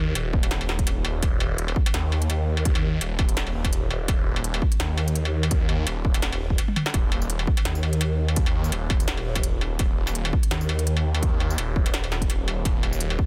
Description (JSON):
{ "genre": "half-time drum and bass", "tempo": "168 BPM", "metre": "4/4", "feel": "swing 55% on 16ths, half-time", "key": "unclear", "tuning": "A4 = 440 Hz", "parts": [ { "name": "phased detuned saw bass", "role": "bass", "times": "0.0-13.2 s", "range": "Eb1 to Eb2", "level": "-27 LUFS", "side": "equal", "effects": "phaser" }, { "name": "industrial drum kit", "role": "drums", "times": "0.2-13.2 s", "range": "hi-hat, snare drum, struck metal, tambourine, toms", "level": "-32 LUFS", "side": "equal", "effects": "studio reverb" }, { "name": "electronic kick drum", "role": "drums", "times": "0.3-13.3 s", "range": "none", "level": "-26 LUFS", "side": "equal", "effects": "studio reverb" } ], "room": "little or no reverb", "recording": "dense, heavily limited modern master", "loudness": "-24 LUFS", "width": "mono", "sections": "0.0-13.3 A section", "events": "drum fill 6.7", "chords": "none" }